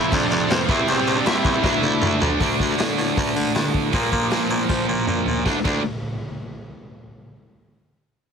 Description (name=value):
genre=punk rock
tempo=157 BPM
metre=4/4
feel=straight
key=D minor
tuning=A4 = 440 Hz
part: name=smooth overdriven lead guitar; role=melody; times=0.0-2.2 s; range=C4 to E5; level=-24 LUFS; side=left 2 dB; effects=none
part: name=cranked stack guitar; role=riff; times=0.0-5.8 s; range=F2 to D4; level=-25 LUFS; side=left 15 dB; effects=overdrive
part: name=distorted electric guitar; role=riff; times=0.0-5.8 s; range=F2 to D4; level=-23 LUFS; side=right 15 dB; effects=overdrive
part: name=raspy baritone saxophone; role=bass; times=0.0-5.8 s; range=D2 to F3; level=-25 LUFS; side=equal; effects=none
part: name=raw garage drum kit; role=drums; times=0.1-5.7 s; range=crash cymbal, hi-hat, kick drum, snare drum, toms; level=-24 LUFS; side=equal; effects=none
room=little or no reverb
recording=heavily compressed radio sound, multiband compression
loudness=-18 LUFS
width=side -6 dB against mid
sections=0.0-2.4 A section; 2.4-5.5 B section; 5.5-7.0 C section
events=drum fill 1.6-2.4, 4.7-5.5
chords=0.0 F5; 0.7 C/E; 1.6 D5; 3.9 Bb5; 5.5 D5